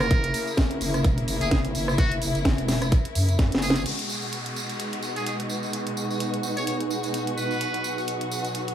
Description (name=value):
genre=bass house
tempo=128 BPM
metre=4/4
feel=swing 56% on 16ths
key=G# minor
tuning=A4 = 440 Hz
part: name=trumpet with metal mute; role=melody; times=0.0-8.0 s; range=F#4 to C#5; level=-33 LUFS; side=right 2 dB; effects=dub echo
part: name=warm chamber string section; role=sustained chords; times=0.0-8.7 s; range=B2 to F#4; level=-30 LUFS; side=left 1 dB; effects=sidechain pumping, low-pass filter
part: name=wobble bass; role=bass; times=0.0-3.8 s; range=E1 to F#2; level=-26 LUFS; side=equal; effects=chorus, overdrive, sidechain pumping
part: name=house drum kit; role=drums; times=0.0-8.7 s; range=crash cymbal, hi-hat, rim click, snare drum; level=-28 LUFS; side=equal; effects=overdrive
part: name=tambourine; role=percussion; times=0.0-8.7 s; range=none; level=-36 LUFS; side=right 3 dB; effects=none
part: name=electronic kick drum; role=drums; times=0.1-3.5 s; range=none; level=-21 LUFS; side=equal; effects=none
part: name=downlifter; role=sound effects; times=3.9-7.6 s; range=none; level=-36 LUFS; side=left 1 dB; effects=none
part: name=granular cloud pad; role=texture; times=4.8-8.7 s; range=D#4 to F#5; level=-31 LUFS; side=right 3 dB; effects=built-in reverb, sidechain pumping
room=light reverb, digital ambience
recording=small room ambience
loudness=-23 LUFS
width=side -10 dB against mid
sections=0.0-3.9 A section; 3.9-8.7 B section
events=drum fill 3.4-3.9; filter sweep on string section 3.9-8.7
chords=0.0 F#; 3.9 G#m7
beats=| 0.11 0.58 1.05 1.51 | 1.98 2.45 2.92 3.39 | 3.86 4.33 4.80 5.26 | 5.73 6.20 6.67 7.14 | 7.61 8.08 8.55